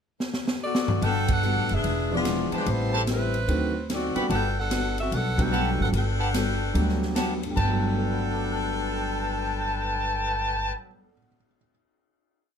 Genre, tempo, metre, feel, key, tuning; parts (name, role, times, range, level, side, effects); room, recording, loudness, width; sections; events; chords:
jazz, big band swing; 146 BPM; 4/4; swing 65% on 8ths; G major; A4 = 440 Hz
swinging big-band drum kit; drums; 0.2-7.7 s; crash cymbal, hi-hat, kick drum, ride cymbal, snare drum, toms; -30 LUFS; right 1 dB
clear saxophone section; melody; 0.6-10.7 s; G3 to G5; -29 LUFS; left 2 dB
fingerpicked steel-string acoustic guitar; accompaniment; 1.0-11.2 s; D3 to B4; -35 LUFS; left 5 dB
clear trumpet section; stabs; 1.0-10.7 s; G4 to B5; -30 LUFS; equal
upright bass; bass; 1.0-10.7 s; E1 to D2; -28 LUFS; equal
warm concert grand piano; accompaniment; 2.1-11.7 s; G2 to A6; -31 LUFS; right 1 dB
moderate club reverb, RT60 0.6 s; -23 LUFS; side -7 dB against mid
0.0-1.0 pickup bar; 1.0-7.6 A section; 7.6-10.9 final chord
drum fill 0.2-1.0; band accent 1.2, 5.3
0.0 Bm7; 1.0 Gmaj9; 1.8 E7b9; 2.7 Am9; 3.5 D7b9; 4.3 Gmaj9